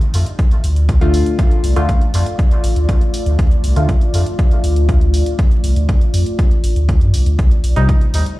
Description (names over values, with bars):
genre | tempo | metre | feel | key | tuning
dub techno | 120 BPM | 4/4 | straight | D phrygian | A4 = 440 Hz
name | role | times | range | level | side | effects
deep dark ambient pad | sustained chords | 0.3-8.4 s | G3 to D5 | -25 LUFS | left 1 dB | chorus, built-in reverb, sidechain pumping
electronic hi-hat | drums | 0.0-8.4 s | none | -31 LUFS | equal | none
pure sine sub bass | bass | 0.1-8.2 s | A1 to G2 | -14 LUFS | equal | sidechain pumping
electronic kick drum | drums | 0.4-8.0 s | none | -14 LUFS | equal | none
deep mellow chord stab | stabs | 1.0-3.9, 7.8-7.9 s | C3 to F4 | -21 LUFS | left 1 dB | chorus, phaser, cassette tape, sidechain pumping, dub echo
room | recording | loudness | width
little or no reverb | played on a big sound system in a bare room, large studio reverb, vinyl crackle | -12 LUFS | side -18 dB against mid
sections
0.0-8.4 A section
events
none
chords
0.0 Dm; 7.4 Cm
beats
0.39 0.89 | 1.39 1.89 2.39 2.89 | 3.39 3.89 4.39 4.89 | 5.39 5.89 6.39 6.89 | 7.39 7.89 8.39